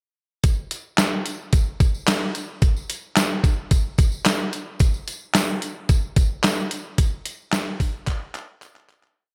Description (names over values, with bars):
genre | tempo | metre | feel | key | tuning
funk | 110 BPM | 4/4 | straight | none | none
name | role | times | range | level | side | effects
detuned 8-bit digital drum machine | drums | 0.4-9.2 s | handclaps, hi-hat, kick drum, snare drum | -22 LUFS | equal | none
tambourine | percussion | 0.4-9.2 s | none | -37 LUFS | equal | none
room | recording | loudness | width
light reverb, digital ambience | bright 1980s-style digital production | -22 LUFS | mono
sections
0.4-9.2 verse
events
fade-out 7.0-9.2; drum fill 8.1-9.2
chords
none